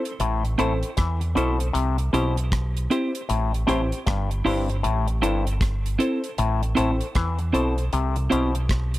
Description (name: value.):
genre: roots reggae.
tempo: 78 BPM.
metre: 4/4.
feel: swing 62% on 16ths.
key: C major.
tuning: A4 = 441 Hz.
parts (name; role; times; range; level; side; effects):
barky reed electric piano; stabs; 0.0-8.5 s; C4 to C5; -29 LUFS; left 2 dB; overdrive, tremolo.
deep reggae drum kit; drums; 0.1-9.0 s; hi-hat, kick drum, rim click; -27 LUFS; equal; none.
auto-wah clav; riff; 0.2-8.5 s; G2 to E3; -28 LUFS; left 5 dB; overdrive.
deep dub fingered electric bass; bass; 0.2-9.0 s; G1 to E2; -24 LUFS; equal; none.
semi-hollow electric guitar; accompaniment; 0.6-8.5 s; C4 to C5; -27 LUFS; right 4 dB; warbly pitch drift, dub echo.
room: light reverb.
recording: none.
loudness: -21 LUFS.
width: side -16 dB against mid.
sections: 0.0-9.0 A section.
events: none.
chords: 0.0 C.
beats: 0.20 0.97 | 1.75 2.52 3.29 4.06 | 4.83 5.61 6.38 7.15 | 7.92 8.70.